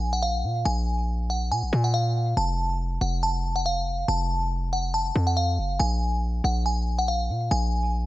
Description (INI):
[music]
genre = hip hop, trap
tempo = 140 BPM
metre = 4/4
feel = half-time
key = unclear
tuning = A4 = 440 Hz
[part]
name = glassy synth bell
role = melody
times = 0.0-7.9 s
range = F5 to A5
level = -27 LUFS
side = equal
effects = chorus, low-pass filter, tape echo
[part]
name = hard-hitting 808-style bass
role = bass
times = 0.0-8.1 s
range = F1 to Bb2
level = -25 LUFS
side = equal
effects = none
[sound]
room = light reverb, digital ambience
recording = none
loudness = -23 LUFS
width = side -16 dB against mid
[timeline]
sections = 0.0-8.1 A section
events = none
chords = 0.0 Bb5; 2.4 F; 5.8 Bb5